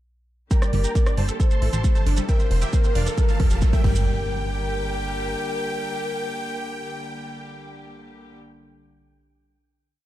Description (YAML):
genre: uplifting trance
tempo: 135 BPM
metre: 4/4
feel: straight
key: G dorian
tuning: A4 = 440 Hz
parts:
  - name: supersaw chords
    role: melody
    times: 0.5-8.4 s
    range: A4 to C6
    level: -32 LUFS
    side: right 2 dB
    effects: sidechain pumping, low-pass filter, dub echo
  - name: warm velvety synth lead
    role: second line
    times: 0.5-8.4 s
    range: Bb4 to C5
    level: -31 LUFS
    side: left 2 dB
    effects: chorus, dub echo
  - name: rich chamber string section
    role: sustained chords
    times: 0.5-8.4 s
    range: C3 to G4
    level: -35 LUFS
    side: left 1 dB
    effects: sidechain pumping
  - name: wide unison pluck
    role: arpeggios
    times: 0.5-4.3 s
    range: E3 to G4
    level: -34 LUFS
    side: right 3 dB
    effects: phaser, sidechain pumping, dub echo
  - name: electronic kick drum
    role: drums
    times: 0.5-3.9 s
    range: none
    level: -19 LUFS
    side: equal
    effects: overdrive
  - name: house drum kit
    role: drums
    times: 0.5-3.9 s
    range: crash cymbal, hi-hat, rim click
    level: -37 LUFS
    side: right 1 dB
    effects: overdrive, high-pass filter on hats, high-pass filter on snare, high-pass filter on cymbals, high-pass filter on room
  - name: maracas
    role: percussion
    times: 0.5-4.0 s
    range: none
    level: -37 LUFS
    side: right 6 dB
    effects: none
  - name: riser and impact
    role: sound effects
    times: 2.0-8.5 s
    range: none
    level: -34 LUFS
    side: right 1 dB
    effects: none
  - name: plucky analog bass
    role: bass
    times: 0.7-5.4 s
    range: F1 to A1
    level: -24 LUFS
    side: equal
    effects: sidechain pumping
room: digital ambience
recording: dark, warm production, faint mains hum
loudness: -20 LUFS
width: side -14 dB against mid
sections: 0.5-4.1 build; 4.1-7.6 final hit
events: build-up 0.5-4.1; filter sweep on supersaw synth 0.5-4.1; filter sweep on synth pluck 0.5-4.1; riser 2.0-4.1; drum fill 2.3-4.1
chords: 0.5 Gm; 1.4 Am7; 2.3 Fsus2; 3.2 Dm; 3.8 Gm